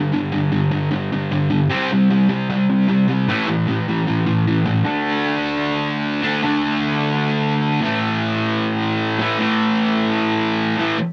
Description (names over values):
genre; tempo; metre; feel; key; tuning
rock; 152 BPM; 4/4; straight; unclear; A4 = 440 Hz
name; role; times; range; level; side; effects
fuzz guitar; solo; 0.0-11.0 s; G2 to D4; -19 LUFS; equal; distortion, cassette tape
room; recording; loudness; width
wet booth ambience, RT60 0.2 s; home recording on cassette; -19 LUFS; mono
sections
0.0-4.9 A section; 4.9-11.1 B section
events
none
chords
0.0 G5; 1.7 C5; 3.3 A5; 4.9 D5; 7.8 A5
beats
| 0.14 0.53 0.93 1.32 | 1.72 2.11 2.50 2.90 | 3.29 3.69 4.08 4.47 | 4.87 5.26 5.66 6.05 | 6.44 6.83 7.23 7.62 | 8.02 8.41 8.80 9.20 | 9.60 9.99 10.39 10.78